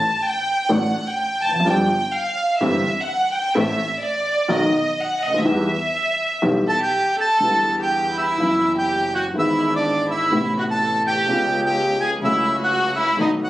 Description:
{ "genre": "tango", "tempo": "125 BPM", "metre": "4/4", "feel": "rubato", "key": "E minor", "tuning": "A4 = 440 Hz", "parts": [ { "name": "rich chamber violin section", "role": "second line", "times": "0.0-13.5 s", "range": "D4 to A5", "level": "-21 LUFS", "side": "equal", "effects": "none" }, { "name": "warm baby grand piano", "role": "accompaniment", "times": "0.7-13.5 s", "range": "G1 to A4", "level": "-22 LUFS", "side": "left 1 dB", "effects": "none" }, { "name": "rich double bass", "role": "bass", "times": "0.7-13.5 s", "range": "F1 to E2", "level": "-30 LUFS", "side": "equal", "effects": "none" }, { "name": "bandoneon", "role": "melody", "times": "6.7-13.5 s", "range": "D5 to A5", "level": "-21 LUFS", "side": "right 1 dB", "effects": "none" } ], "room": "moderate club reverb, RT60 0.7 s", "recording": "recorded on a phone in the room, club reverb", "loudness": "-18 LUFS", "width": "side -15 dB against mid", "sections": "0.0-7.4 A section; 7.4-13.5 B section", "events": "violin section solo 0.0-7.4", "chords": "0.0 N.C.; 0.7 D/A; 1.7 G7; 2.6 C/G; 3.6 Am; 4.5 B; 5.5 Em; 7.4 Em7; 8.4 Bsus4/F#; 9.4 E/G#; 10.3 Amadd9; 11.3 C#7; 12.2 F#m/C#", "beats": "0.22 0.71 1.18 | 1.66 2.14 2.61 3.09 | 3.56 4.03 4.50 4.98 | 5.46 5.94 6.43 6.92 | 7.41 7.90 8.38 8.87 | 9.35 9.83 10.31 10.79 | 11.27 11.75 12.22 12.70 | 13.18" }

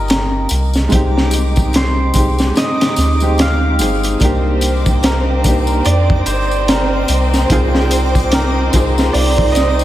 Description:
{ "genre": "trip hop", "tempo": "73 BPM", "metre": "4/4", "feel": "swing 59% on 16ths", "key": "C minor", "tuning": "A4 = 438 Hz", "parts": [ { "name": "cimbalom", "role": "melody", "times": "0.0-9.8 s", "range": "Bb4 to F5", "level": "-21 LUFS", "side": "right 2 dB", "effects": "vintage 12-bit sampler grit, tape echo" }, { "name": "clear upright piano", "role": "accompaniment", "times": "0.0-9.8 s", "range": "Ab3 to Ab4", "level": "-21 LUFS", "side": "equal", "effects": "tremolo, vintage 12-bit sampler grit, tape echo" }, { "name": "soft dub sub bass", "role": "bass", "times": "0.0-9.8 s", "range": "G1 to F2", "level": "-16 LUFS", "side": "equal", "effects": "none" }, { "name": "backwards swelling texture", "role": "texture", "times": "0.0-9.8 s", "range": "Eb4 to D6", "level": "-27 LUFS", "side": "right 1 dB", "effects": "built-in reverb, lush chorus" }, { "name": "crunchy breakbeat drum kit", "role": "drums", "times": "0.1-9.8 s", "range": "hi-hat, kick drum, snare drum", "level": "-17 LUFS", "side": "equal", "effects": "none" }, { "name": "tambourine", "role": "percussion", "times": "0.1-9.8 s", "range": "none", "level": "-29 LUFS", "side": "left 3 dB", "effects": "none" }, { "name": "warm studio violin section", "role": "sustained chords", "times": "4.2-9.8 s", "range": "C4 to C5", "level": "-21 LUFS", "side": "equal", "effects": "none" } ], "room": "moderate lush hall reverb, RT60 1.9 s, studio reverb", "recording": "dreamy mix soaked in reverb", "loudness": "-12 LUFS", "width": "side -13 dB against mid", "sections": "0.0-9.8 A section", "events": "none", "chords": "0.0 Ebmaj9; 0.9 Fm13; 4.2 Cm9; 7.5 Bb9sus4/C", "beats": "0.10 | 0.92 1.74 2.57 3.39 | 4.21 5.03 5.85 6.68 | 7.50 8.32 9.14" }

